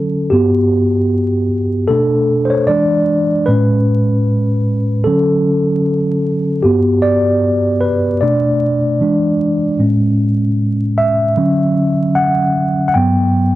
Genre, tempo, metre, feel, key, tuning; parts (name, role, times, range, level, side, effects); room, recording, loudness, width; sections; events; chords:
hip hop; 76 BPM; 4/4; swing 59% on 16ths; A major; A4 = 441 Hz
mellow tine electric piano; solo; 0.0-13.6 s; G2 to G5; -12 LUFS; equal; medium stereo tremolo, cassette tape
moderate small room reverb, RT60 0.5 s; vinyl crackle, nothing above 10.6 kHz; -12 LUFS; side -15 dB against mid
0.0-13.6 A section
tine electric piano solo 0.0-13.6
0.3 Gmaj7; 1.9 Bm7; 2.7 E7; 3.5 Amaj9; 5.1 Dmaj7; 6.6 Gmaj7; 8.2 Bm7; 9.0 E7; 9.8 Amaj7; 11.4 Dmaj7; 12.9 Gmaj7